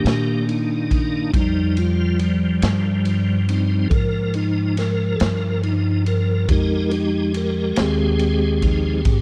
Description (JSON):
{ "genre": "slow blues", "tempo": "47 BPM (dotted quarters)", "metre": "12/8", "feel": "straight", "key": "unclear", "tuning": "A4 = 438 Hz", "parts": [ { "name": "tonewheel organ", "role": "sustained chords", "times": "0.0-9.2 s", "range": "Eb3 to Bb4", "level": "-23 LUFS", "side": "equal", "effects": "slow rotary speaker, chorus vibrato" }, { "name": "upright bass", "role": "bass", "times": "0.0-9.2 s", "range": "Ab1 to Bb2", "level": "-24 LUFS", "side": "equal", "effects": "none" }, { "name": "raw garage drum kit", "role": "drums", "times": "0.1-9.2 s", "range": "kick drum, ride cymbal, snare drum", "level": "-27 LUFS", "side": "equal", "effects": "none" } ], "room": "small room ambience", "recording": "dry, close 1970s-style studio recording", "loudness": "-20 LUFS", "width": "mono", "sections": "0.0-9.2 A section", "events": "tonewheel organ solo 0.0-9.2", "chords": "0.0 Cm7 (rootless); 1.3 Fm7", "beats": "0.06 | 1.34 2.63 3.92 5.20 | 6.49 7.77 9.06" }